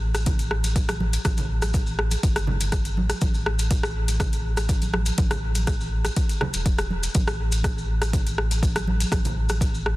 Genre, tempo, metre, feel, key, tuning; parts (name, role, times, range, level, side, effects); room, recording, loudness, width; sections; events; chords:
afro house; 122 BPM; 4/4; straight; A4 = 439 Hz
warm sub bass; bass; 0.0-10.0 s; E1 to A1; -25 LUFS; equal; sidechain pumping
deep house drum kit; drums; 0.1-10.0 s; hi-hat, rim click; -29 LUFS; equal; overdrive
congas; percussion; 0.1-9.7 s; -32 LUFS; right 2 dB
maracas; percussion; 0.1-9.8 s; -36 LUFS; left 1 dB
electronic kick drum; drums; 0.3-9.7 s; -24 LUFS; equal; overdrive
small room ambience; dense, heavily limited modern master; -21 LUFS; side -18 dB against mid
0.0-10.0 A section